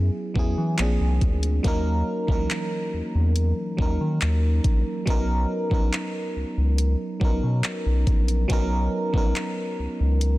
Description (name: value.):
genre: contemporary R&B.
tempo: 70 BPM.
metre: 4/4.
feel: straight.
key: B major.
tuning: A4 = 439 Hz.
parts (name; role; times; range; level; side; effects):
FM electric piano; accompaniment; 0.0-10.4 s; E3 to A#4; -27 LUFS; right 1 dB; chorus.
round analog bass; bass; 0.0-10.4 s; A#1 to E3; -22 LUFS; equal; none.
smooth R&B drum kit; drums; 0.4-10.4 s; handclaps, hi-hat, kick drum; -25 LUFS; equal; none.
room: little or no reverb.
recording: dense, heavily limited modern master.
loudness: -21 LUFS.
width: side -18 dB against mid.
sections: 0.0-10.4 A section.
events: none.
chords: 0.0 E69; 0.8 A#7; 1.6 D#m7; 5.1 Bmaj9.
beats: 0.79 | 1.64 2.50 3.36 4.21 | 5.07 5.93 6.79 7.64 | 8.50 9.36 10.21.